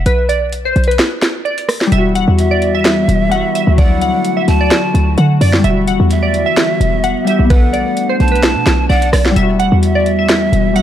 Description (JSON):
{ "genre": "hip hop, trap", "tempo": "129 BPM", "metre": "4/4", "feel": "half-time", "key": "E minor", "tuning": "A4 = 437 Hz", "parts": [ { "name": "short 808-style bass", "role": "bass", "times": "0.0-10.8 s", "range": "E1 to D3", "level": "-14 LUFS", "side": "equal", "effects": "none" }, { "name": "glassy wavetable pluck", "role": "melody", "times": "0.1-10.8 s", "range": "B4 to F#5", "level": "-18 LUFS", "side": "equal", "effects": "chorus, ping-pong delay" }, { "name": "trap drum kit", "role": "drums", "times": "0.1-10.8 s", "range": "finger snaps, hi-hat, kick drum, rim click, snare drum", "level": "-16 LUFS", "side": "equal", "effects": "none" }, { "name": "Celtic harp", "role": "accompaniment", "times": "1.9-10.8 s", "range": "F#3 to A4", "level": "-18 LUFS", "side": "left 4 dB", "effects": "none" }, { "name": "warbly tape-like pad", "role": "sustained chords", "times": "1.9-10.8 s", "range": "D3 to F#4", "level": "-20 LUFS", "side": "equal", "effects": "chorus, built-in reverb" }, { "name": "breathy bright pan flute", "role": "second line", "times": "2.4-10.8 s", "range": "D5 to A5", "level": "-20 LUFS", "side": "right 3 dB", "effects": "ping-pong delay" } ], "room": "digital ambience", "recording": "dark, warm production, vinyl crackle", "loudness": "-10 LUFS", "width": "side -11 dB against mid", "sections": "0.0-1.9 A section; 1.9-10.8 B section", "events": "kick muted 1.0-1.9", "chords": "0.1 Bm; 1.9 Emadd9; 3.8 Dadd9; 5.6 Emadd9; 7.5 Bm7; 9.4 Emadd9" }